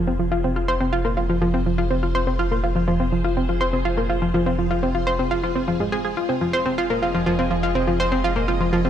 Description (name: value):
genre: ambient, sequencer-driven space music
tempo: 123 BPM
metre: 4/4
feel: straight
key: F minor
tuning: A4 = 438 Hz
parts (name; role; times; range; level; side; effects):
- string machine, full ensemble; sustained chords; 0.0-8.9 s; F4 to Eb5; -32 LUFS; left 1 dB; ensemble chorus
- warm sub bass; bass; 0.0-8.9 s; F1; -26 LUFS; equal; none
- analog pluck; riff; 0.1-8.9 s; F3 to C5; -20 LUFS; equal; chorus, analog delay
room: moderate concert hall reverb, RT60 2.1 s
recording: none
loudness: -19 LUFS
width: side -10 dB against mid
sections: 0.0-8.9 A section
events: fade-in on string machine 0.0-8.9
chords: 0.0 Fm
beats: | 0.32 0.80 1.29 1.78 | 2.27 2.75 3.24 3.73 | 4.22 4.71 5.19 5.68 | 6.17 6.66 7.14 7.63 | 8.12 8.61